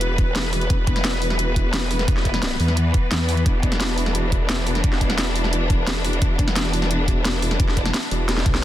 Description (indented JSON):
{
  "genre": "dark technical drum and bass",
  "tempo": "174 BPM",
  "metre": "4/4",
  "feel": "straight",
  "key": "unclear",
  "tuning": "A4 = 441 Hz",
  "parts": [
    { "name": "rich studio string section", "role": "sustained chords", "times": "0.0-8.6 s", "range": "E3 to B4", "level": "-25 LUFS", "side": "left 1 dB", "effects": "sidechain pumping" },
    { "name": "growl bass", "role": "bass", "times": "0.0-8.6 s", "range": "E1 to E2", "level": "-23 LUFS", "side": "equal", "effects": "chorus, tube saturation, sidechain pumping" },
    { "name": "drum and bass drum kit", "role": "drums", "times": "0.0-8.6 s", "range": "hi-hat, snare drum", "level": "-25 LUFS", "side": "equal", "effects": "overdrive" },
    { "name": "electronic kick drum", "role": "drums", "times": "0.2-8.5 s", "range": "none", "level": "-20 LUFS", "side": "equal", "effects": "overdrive" }
  ],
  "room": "light reverb, digital ambience",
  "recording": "dense, heavily limited modern master",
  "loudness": "-18 LUFS",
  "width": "side -13 dB against mid",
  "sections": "0.0-8.6 A section",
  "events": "drum fill 8.3-8.6",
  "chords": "0.0 E5"
}